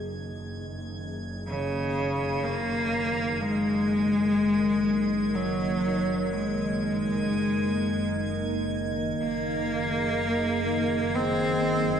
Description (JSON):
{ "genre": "ambient", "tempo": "free time", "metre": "none", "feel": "none", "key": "Gb major", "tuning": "A4 = 440 Hz", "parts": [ { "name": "warbly tape-like pad", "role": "sustained chords", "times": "0.0-12.0 s", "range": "Eb3 to Eb5", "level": "-30 LUFS", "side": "right 1 dB", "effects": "chorus, built-in reverb" }, { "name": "rich studio double bass section", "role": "bass", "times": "0.0-12.0 s", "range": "Gb1", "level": "-35 LUFS", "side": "right 1 dB", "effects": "none" }, { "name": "drifting glass-harmonics texture", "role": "texture", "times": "0.0-12.0 s", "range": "Ab6", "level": "-39 LUFS", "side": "equal", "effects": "chorus, built-in reverb" }, { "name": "bright cello", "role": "melody", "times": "1.5-12.0 s", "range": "Db3 to C4", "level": "-26 LUFS", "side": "equal", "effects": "tape echo" } ], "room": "wet spring reverb, RT60 2.5 s", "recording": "echo-heavy mix", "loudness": "-24 LUFS", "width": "side -8 dB against mid", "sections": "0.0-12.0 A section", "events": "fade-in on ambient pad 0.0-12.0; fade-in on double bass section 0.0-12.0; fade-in on synth texture 0.0-12.0", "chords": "0.0 Gb69" }